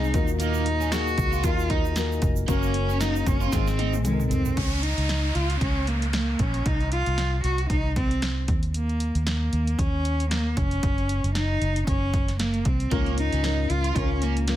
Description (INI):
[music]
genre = piano-driven pop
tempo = 115 BPM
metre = 4/4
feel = swing 56% on 16ths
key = unclear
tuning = A4 = 440 Hz
[part]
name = rich cello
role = melody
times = 0.0-14.6 s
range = Ab3 to Gb4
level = -28 LUFS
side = equal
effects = none
[part]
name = dark upright piano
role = accompaniment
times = 0.0-4.6, 12.9-14.6 s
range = Ab2 to Bb4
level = -30 LUFS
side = left 6 dB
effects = none
[part]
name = vintage muted fingered electric bass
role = bass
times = 0.0-14.6 s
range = F1 to Eb2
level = -26 LUFS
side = equal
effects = none
[part]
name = egg shaker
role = percussion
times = 0.0-4.6 s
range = none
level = -43 LUFS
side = right 13 dB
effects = none
[part]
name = punchy analog drum machine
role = drums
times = 0.1-14.6 s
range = hi-hat, kick drum, snare drum, toms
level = -28 LUFS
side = equal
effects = none
[part]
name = crunchy overdriven guitar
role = riff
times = 0.4-3.9, 12.9-14.4 s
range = Bb3 to F4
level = -33 LUFS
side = right 11 dB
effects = none
[part]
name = downlifter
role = sound effects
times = 4.6-8.7 s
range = none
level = -35 LUFS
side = right 1 dB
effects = none
[sound]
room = little or no reverb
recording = dense, heavily limited modern master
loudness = -22 LUFS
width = side -13 dB against mid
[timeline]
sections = 0.0-4.6 A section; 4.6-14.6 B section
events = drum fill 3.5-4.6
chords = 0.1 Ebm; 2.5 Gb; 3.5 Ab; 4.6 Bbmadd11; 6.7 Cmadd11; 8.5 Eb5; 10.8 Gb5; 12.9 Db6